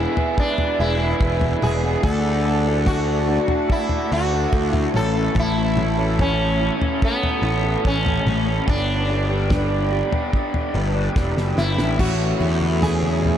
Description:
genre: psychedelic rock.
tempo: 72 BPM.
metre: 4/4.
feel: straight.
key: unclear.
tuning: A4 = 439 Hz.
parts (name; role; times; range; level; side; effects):
sitar; melody; 0.0-13.4 s; B3 to A4; -24 LUFS; equal; analog delay.
pedal harmonium; sustained chords; 0.0-13.4 s; B4 to B5; -30 LUFS; right 5 dB; none.
raw garage guitar; riff; 0.0-13.4 s; E2 to A4; -25 LUFS; left 1 dB; overdrive, flanger.
fuzz picked electric bass; bass; 0.0-13.4 s; E1 to E2; -22 LUFS; equal; overdrive.
damped 70s drum kit; drums; 0.2-13.4 s; crash cymbal, kick drum, snare drum, toms; -23 LUFS; equal; none.
congas; percussion; 12.4-13.4 s; none; -30 LUFS; left 2 dB; none.
room: moderate huge ambient reverb, RT60 8.3 s.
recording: dreamy mix soaked in reverb.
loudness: -18 LUFS.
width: side -10 dB against mid.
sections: 0.0-12.0 A section; 12.0-13.4 B section.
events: drum fill 11.2-12.0.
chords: 0.0 E; 2.0 D; 4.9 Aadd9; 8.7 G; 12.0 A.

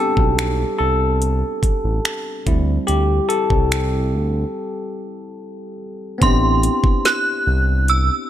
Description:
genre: contemporary R&B.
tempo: 72 BPM.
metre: 4/4.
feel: straight.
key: A dorian.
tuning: A4 = 440 Hz.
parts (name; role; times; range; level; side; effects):
bell-like tine electric piano; accompaniment; 0.0-8.3 s; G3 to A4; -21 LUFS; left 1 dB; phaser.
smooth synth bass; bass; 0.2-8.1 s; A1 to D2; -19 LUFS; equal; none.
smooth R&B drum kit; drums; 0.2-8.1 s; finger snaps, hi-hat, kick drum, snare drum; -20 LUFS; equal; none.
synth chime; melody; 6.2-8.3 s; C6 to F#6; -19 LUFS; right 3 dB; ensemble chorus, tremolo.
room: digital ambience.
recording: none.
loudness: -16 LUFS.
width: side -11 dB against mid.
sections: 0.0-6.2 A section; 6.2-8.3 B section.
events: tine electric piano solo 0.0-6.2; break 4.5-6.2.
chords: 0.0 Am11; 2.5 D7sus4; 6.2 Am11.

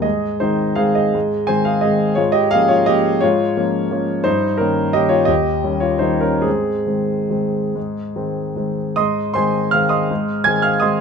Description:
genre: classical, piano waltz.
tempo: 132-184 BPM.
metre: 3/4.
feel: rubato.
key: Ab major.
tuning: A4 = 441 Hz.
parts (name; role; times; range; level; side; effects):
warm concert grand piano; solo; 0.0-11.0 s; Eb2 to Ab6; -15 LUFS; equal; none.
room: light reverb.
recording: minimal, uncompressed stereo recording.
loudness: -15 LUFS.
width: side -6 dB against mid.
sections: 0.0-9.0 A section; 9.0-11.0 A section.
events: none.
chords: 0.0 Ab; 2.2 Bbm7/Ab; 4.3 Eb7/G; 5.3 Eb7; 6.5 Ab.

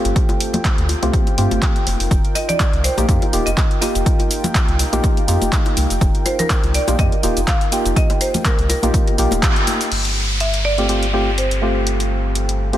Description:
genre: deep house.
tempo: 123 BPM.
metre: 4/4.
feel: swing 55% on 16ths.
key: unclear.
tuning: A4 = 440 Hz.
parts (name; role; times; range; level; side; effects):
warm analog pad; sustained chords; 0.0-12.8 s; Eb4 to G5; -29 LUFS; equal; chorus, sidechain pumping.
percussive organ stab; stabs; 0.0-12.8 s; A3 to G4; -22 LUFS; equal; chorus, sidechain pumping, analog delay.
bongos and congas; percussion; 0.0-9.8 s; none; -26 LUFS; left 3 dB; none.
warm sub bass; bass; 0.1-12.8 s; Eb1 to G2; -20 LUFS; equal; none.
deep house drum kit; drums; 0.1-12.8 s; cabasa, crash cymbal, handclaps, hi-hat; -23 LUFS; equal; overdrive, small room ambience.
electronic kick drum; drums; 0.2-9.5 s; none; -17 LUFS; equal; overdrive, small room ambience.
marimba with hard mallets; melody; 2.4-12.8 s; Bb4 to G5; -24 LUFS; right 2 dB; vintage 12-bit sampler grit, analog delay.
downlifter; sound effects; 9.9-12.8 s; none; -24 LUFS; equal; none.
room: light reverb.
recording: dense, heavily limited modern master.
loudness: -15 LUFS.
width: side -12 dB against mid.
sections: 0.0-9.9 A section; 9.9-12.8 B section.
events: band accent 9.4.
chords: 0.0 G9sus4; 1.9 F9sus4; 9.9 G9sus4.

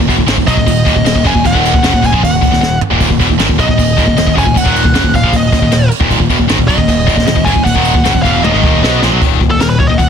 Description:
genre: heavy metal.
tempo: 154 BPM.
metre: 4/4.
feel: straight.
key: Eb minor.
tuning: A4 = 440 Hz.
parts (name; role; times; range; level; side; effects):
high-gain distorted guitar; riff; 0.0-9.2 s; Eb2 to Cb4; -16 LUFS; right 14 dB; distortion.
tight distorted guitar; riff; 0.0-10.1 s; Eb2 to Cb4; -15 LUFS; left 11 dB; distortion.
growling picked electric bass; bass; 0.0-10.1 s; Eb1 to Cb2; -16 LUFS; equal; overdrive.
jazz brush drum kit; drums; 0.1-10.1 s; crash cymbal, kick drum, snare drum, toms; -14 LUFS; equal; soft clipping on snare.
high-gain lead guitar; melody; 0.5-10.1 s; A4 to Ab5; -16 LUFS; equal; distortion.
room: little or no reverb.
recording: dense, heavily limited modern master.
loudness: -8 LUFS.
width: side -7 dB against mid.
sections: 0.0-9.2 A section.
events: drum fill 2.6-3.0, 8.4-9.2.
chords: 0.0 Ebm; 9.2 Eb5.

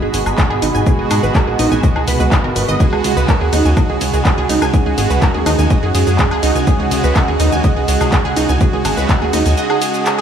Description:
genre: melodic techno.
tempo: 124 BPM.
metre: 4/4.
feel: straight.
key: G# minor.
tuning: A4 = 440 Hz.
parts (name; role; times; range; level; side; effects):
wide unison pluck; arpeggios; 0.0-10.2 s; D#4 to G#6; -20 LUFS; right 2 dB; cassette tape, sidechain pumping, analog delay.
brassy analog pad; stabs; 0.0-10.2 s; B2 to F#4; -20 LUFS; right 4 dB; chorus, sidechain pumping, analog delay.
plucky analog bass; bass; 0.0-9.5 s; G#1 to G#2; -17 LUFS; equal; sidechain pumping.
ethereal airy pad; texture; 0.0-10.2 s; C#4 to B5; -23 LUFS; equal; ensemble chorus, built-in reverb, phaser, sidechain pumping.
deep house drum kit; drums; 0.1-10.2 s; handclaps, hi-hat, ride cymbal, shaker, woodblock; -22 LUFS; left 1 dB; sidechain pumping on perc, sidechain pumping on hats, sidechain pumping on cymbals.
electronic kick drum; drums; 0.4-9.2 s; none; -15 LUFS; equal; none.
room: moderate lush hall reverb, RT60 1.7 s, digital ambience.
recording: dreamy mix soaked in reverb.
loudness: -12 LUFS.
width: side -8 dB against mid.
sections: 0.0-10.2 A section.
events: none.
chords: 0.0 G#m7.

